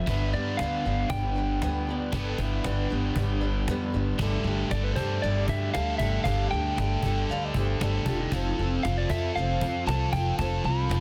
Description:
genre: folk rock and heartland rock.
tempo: 116 BPM.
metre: 4/4.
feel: straight.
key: unclear.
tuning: A4 = 442 Hz.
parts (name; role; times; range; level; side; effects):
electric slide guitar; melody; 0.0-11.0 s; B4 to B5; -34 LUFS; equal; none.
picked old ladder-braced acoustic guitar; accompaniment; 0.0-11.0 s; G2 to B4; -37 LUFS; equal; none.
overdriven electric guitar; riff; 0.0-11.0 s; F3 to B4; -35 LUFS; equal; none.
upright bass; bass; 0.0-11.0 s; E1 to G2; -30 LUFS; equal; none.
cajon; drums; 0.1-11.0 s; none; -35 LUFS; equal; none.
electric guitar through a small old amp; second line; 1.9-4.0, 7.3-8.8 s; C4 to F5; -38 LUFS; equal; tremolo.
room: little or no reverb.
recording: dense, heavily limited modern master.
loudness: -27 LUFS.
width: mono.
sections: 0.0-4.2 A section; 4.2-11.0 B section.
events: none.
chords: 0.1 G; 4.2 Gsus2; 8.3 F.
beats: | 0.07 0.59 1.10 1.62 | 2.14 2.65 3.17 3.68 | 4.20 4.72 5.23 5.75 | 6.26 6.78 7.29 7.81 | 8.32 8.84 9.35 9.87 | 10.38 10.90.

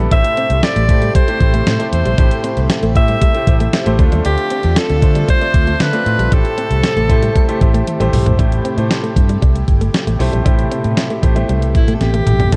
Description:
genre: 1980s-style pop.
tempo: 116 BPM.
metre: 4/4.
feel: straight.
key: A minor.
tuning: A4 = 442 Hz.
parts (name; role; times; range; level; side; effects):
clear concert grand piano; accompaniment; 0.0-12.6 s; A2 to D5; -24 LUFS; equal; none.
string machine, full ensemble; sustained chords; 0.0-12.6 s; B2 to A4; -29 LUFS; equal; none.
direct-recorded clean electric guitar; riff; 0.0-12.6 s; G3 to D4; -28 LUFS; equal; subtle chorus.
mellow synth brass; stabs; 0.0-8.3 s; F4 to D5; -32 LUFS; equal; none.
vintage muted fingered electric bass; bass; 0.0-12.6 s; G1 to D3; -19 LUFS; equal; none.
bright alto saxophone; melody; 0.1-7.9, 11.8-12.6 s; E4 to E5; -21 LUFS; equal; digital delay.
clean 12-bit digital drum machine; drums; 0.1-12.6 s; crash cymbal, hi-hat, kick drum, snare drum, toms; -17 LUFS; equal; none.
room: light reverb, digital ambience.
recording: dark, warm production.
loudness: -14 LUFS.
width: mono.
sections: 0.0-8.4 A section; 8.4-12.5 B section.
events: drum fill 7.9-8.4, 12.0-12.5.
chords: 0.1 Am7; 4.0 Dm7; 6.3 Am7.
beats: | 0.11 0.63 1.15 1.67 | 2.18 2.70 3.22 3.73 | 4.25 4.77 5.29 5.80 | 6.32 6.84 7.35 7.87 | 8.39 8.91 9.42 9.94 | 10.46 10.97 11.49 12.01 | 12.53.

